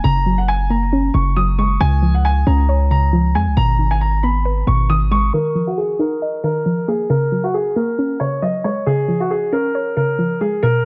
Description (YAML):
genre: hip hop, trap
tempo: 136 BPM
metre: 4/4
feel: half-time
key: unclear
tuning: A4 = 439 Hz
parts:
  - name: dark grand piano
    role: melody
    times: 0.0-10.8 s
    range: Gb4 to Eb6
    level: -22 LUFS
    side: equal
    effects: low-pass filter
  - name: soft round pluck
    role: accompaniment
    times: 0.0-10.8 s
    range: Cb3 to Eb5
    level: -22 LUFS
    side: equal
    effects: chorus, low-pass filter
  - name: warm 808-style bass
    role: bass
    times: 0.0-5.3 s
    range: Gb1 to F2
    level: -19 LUFS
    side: equal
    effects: none
room: studio reverb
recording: none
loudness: -17 LUFS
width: mono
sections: 0.0-5.3 A section; 5.3-10.8 B section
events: filter sweep 5.3-10.8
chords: 0.0 Gbadd9; 1.8 Db; 3.6 Abm; 5.3 Ebsus2; 7.1 Gbadd9; 8.9 Db